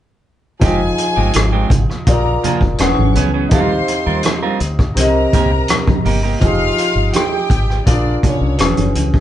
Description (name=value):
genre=lush 1970s-style soul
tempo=83 BPM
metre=4/4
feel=straight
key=unclear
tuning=A4 = 445 Hz
part: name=warm studio string section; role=second line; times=0.6-8.9 s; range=Db4 to C#6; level=-22 LUFS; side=left 1 dB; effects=none
part: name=warm concert grand piano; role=accompaniment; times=0.6-9.2 s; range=C3 to F#5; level=-19 LUFS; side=left 1 dB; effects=none
part: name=semi-hollow electric guitar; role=riff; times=0.6-6.4 s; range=Eb3 to Bb4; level=-21 LUFS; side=right 5 dB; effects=none
part: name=deep dub fingered electric bass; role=bass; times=0.6-9.2 s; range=E1 to Eb2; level=-18 LUFS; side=equal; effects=none
part: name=vintage drum kit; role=drums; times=0.6-9.2 s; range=hi-hat, kick drum, rim click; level=-17 LUFS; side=equal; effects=none
part: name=congas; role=percussion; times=0.6-9.1 s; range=none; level=-23 LUFS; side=right 3 dB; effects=none
room=moderate studio ambience, RT60 0.5 s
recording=band playing live in one room, nothing above 10.7 kHz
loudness=-13 LUFS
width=side -12 dB against mid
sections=0.6-6.4 A section; 6.4-9.2 B section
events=none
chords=0.6 Fm9; 2.1 Bb7; 2.8 E69; 3.5 Eb69; 5.0 Cm7; 6.4 Fm9; 7.9 Bb7; 8.6 E69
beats=| 0.62 1.34 2.07 2.79 | 3.52 4.24 4.96 5.69 | 6.42 7.14 7.87 8.59